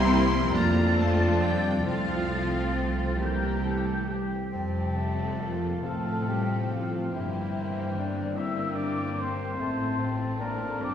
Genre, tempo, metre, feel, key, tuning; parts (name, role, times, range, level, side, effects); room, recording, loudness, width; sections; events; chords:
classical, slow romantic movement for symphony orchestra; 44-50 BPM (dotted quarters); 6/8; rubato; F major; A4 = 439 Hz
rich symphonic violin section; melody; 0.0-10.9 s; F4 to C6; -40 LUFS; left 4 dB
bright clarinet; second line; 0.0-10.9 s; D4 to E5; -37 LUFS; equal
mellow hollow large flute ensemble; second line; 0.0-10.9 s; D5 to A6; -35 LUFS; left 2 dB
rich symphonic violin section; second line; 0.0-10.9 s; C4 to G4; -38 LUFS; left 3 dB
warm oboe; second line; 0.0-10.9 s; F4 to A5; -38 LUFS; equal
clear bassoon; accompaniment; 0.0-10.9 s; A3 to E4; -37 LUFS; left 2 dB
rich symphonic viola section; accompaniment; 0.0-10.9 s; E3 to Bb3; -36 LUFS; right 1 dB
dark French horn section; sustained chords; 0.0-10.9 s; D3 to G4; -34 LUFS; left 2 dB
mellow trombone section; sustained chords; 0.0-4.2 s; E3 to Bb3; -34 LUFS; right 4 dB
concert harp; arpeggios; 0.0-10.9 s; F2 to C5; -36 LUFS; left 2 dB
clear studio cello section; bass; 0.0-10.9 s; F2 to C4; -33 LUFS; equal
rich symphonic double bass section; bass; 0.0-10.9 s; F1 to F2; -31 LUFS; right 1 dB
wet concert hall reverb, RT60 1.8 s; heard from further back in the room, small room ambience; -25 LUFS; side -9 dB against mid
0.0-4.5 A section; 4.5-10.9 B section
0.0 C7; 0.5 F; 1.8 F/C; 3.2 C; 4.5 F; 7.1 C7/G; 9.6 F/A